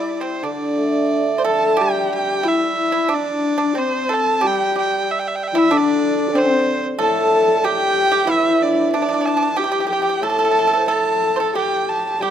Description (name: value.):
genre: chinese traditional, Chinese chamber ensemble.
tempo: 92 BPM.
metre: 4/4.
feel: rubato.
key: D shang mode.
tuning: A4 = 439 Hz.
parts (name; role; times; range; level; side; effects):
rich erhu; melody; 0.0-12.3 s; C5 to A5; -20 LUFS; right 3 dB; none.
low xiao; second line; 0.0-12.3 s; D4 to D5; -24 LUFS; left 7 dB; none.
pipa; second line; 0.0-12.3 s; C4 to C5; -24 LUFS; right 5 dB; none.
hammered dulcimer; accompaniment; 0.0-12.3 s; A2 to D4; -23 LUFS; right 3 dB; none.
dark horsehead fiddle; second line; 1.5-12.3 s; C4 to A4; -22 LUFS; left 4 dB; none.
room: light reverb.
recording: close, detailed microphones.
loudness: -16 LUFS.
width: side -9 dB against mid.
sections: 0.0-1.8 A section; 1.8-12.3 B section.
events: none.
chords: none.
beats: 0.45 1.12 | 1.80 2.46 3.12 3.78 | 4.44 5.08 5.72 6.36 | 7.00 7.63 8.29 8.94 | 9.58 10.23 10.89 11.55 | 12.21.